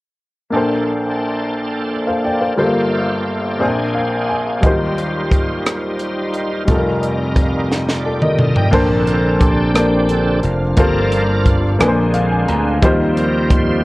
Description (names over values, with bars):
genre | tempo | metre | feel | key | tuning
slow gospel | 59 BPM (dotted quarters) | 6/8 | straight | Bb major | A4 = 440 Hz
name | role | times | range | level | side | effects
clear upright piano | accompaniment | 0.5-13.8 s | F1 to Bb5 | -18 LUFS | left 1 dB | none
bright tonewheel organ | sustained chords | 0.5-13.8 s | D3 to G5 | -22 LUFS | right 2 dB | slow rotary speaker, overdrive, chorus vibrato
crisp fusion drum kit | drums | 4.6-13.7 s | crash cymbal, hi-hat, kick drum, rim click, snare drum, toms | -17 LUFS | equal | none
mellow French horn section | sustained chords | 8.7-13.8 s | F3 to C5 | -26 LUFS | right 1 dB | none
slap bass | bass | 8.7-13.8 s | F1 to Eb2 | -18 LUFS | equal | none
room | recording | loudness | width
moderate large studio reverb, RT60 0.9 s, studio ambience | worn, warbling old tape, cassette tape, warbly pitch drift | -14 LUFS | side -20 dB against mid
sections
0.5-8.7 A section; 8.7-13.8 B section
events
upright piano fill 3.6-4.6, 11.8-12.8; drum fill 7.7-8.7; tonewheel organ fill 7.7-8.7; tonewheel organ solo 8.7-13.8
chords
0.5 Bbmaj9; 2.6 Gm11; 3.6 Bb9; 4.6 Eb69; 6.7 F9sus4; 8.7 Bbmaj9; 10.8 Gm11; 11.8 Bb9; 12.8 Eb69